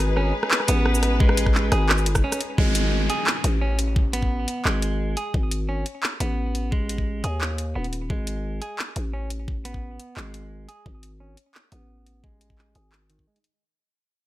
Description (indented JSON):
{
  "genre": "half-time drum and bass",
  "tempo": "174 BPM",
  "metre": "4/4",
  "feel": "half-time",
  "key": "G# phrygian",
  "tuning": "A4 = 440 Hz",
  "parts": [
    { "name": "rich symphonic string section", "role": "sustained chords", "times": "0.0-2.6 s", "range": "G#3 to B4", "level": "-29 LUFS", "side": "left 3 dB", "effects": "sidechain pumping" },
    { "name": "growling 808-style bass", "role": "bass", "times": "0.0-13.3 s", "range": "D#1 to D#2", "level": "-24 LUFS", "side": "equal", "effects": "none" },
    { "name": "clean electric guitar", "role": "arpeggios", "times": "0.2-13.4 s", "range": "D#3 to G#4", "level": "-30 LUFS", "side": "right 3 dB", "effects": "low-pass filter, digital delay" },
    { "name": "drum and bass drum kit", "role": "drums", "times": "0.2-13.5 s", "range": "handclaps, hi-hat, rim click, shaker", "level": "-25 LUFS", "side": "equal", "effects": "studio reverb" },
    { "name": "electronic kick drum", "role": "drums", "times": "1.2-13.3 s", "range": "none", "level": "-22 LUFS", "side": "equal", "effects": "studio reverb" },
    { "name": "downlifter", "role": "sound effects", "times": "2.6-5.3 s", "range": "none", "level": "-30 LUFS", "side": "equal", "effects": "none" }
  ],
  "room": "light reverb, digital ambience",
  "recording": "none",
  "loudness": "-21 LUFS",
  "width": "side -15 dB against mid",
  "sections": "0.0-2.6 A section; 2.6-13.6 B section",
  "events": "drop 0.0-2.6; break 2.2-2.6; fade-out 2.6-13.6; filter sweep on clean electric guitar 2.6-13.6",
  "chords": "0.0 G#5"
}